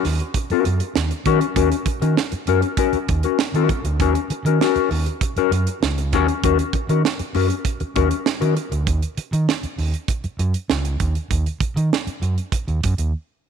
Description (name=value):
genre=funk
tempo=99 BPM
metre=4/4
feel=straight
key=Eb minor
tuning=A4 = 442 Hz
part: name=mellow electric guitar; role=accompaniment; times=0.0-8.8 s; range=Db4 to Bb4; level=-21 LUFS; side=left 12 dB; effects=wide subtle chorus
part: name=overdriven fingered electric bass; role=bass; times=0.0-13.1 s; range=Db2 to Eb3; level=-21 LUFS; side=right 1 dB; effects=none
part: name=tight funk drum kit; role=drums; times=0.0-13.1 s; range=hi-hat, kick drum, snare drum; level=-23 LUFS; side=right 5 dB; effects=none
room=light reverb, small room reverb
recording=1960s-style stereo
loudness=-18 LUFS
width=side -7 dB against mid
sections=0.0-13.5 A section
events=break 8.9-13.5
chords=0.0 Ebm7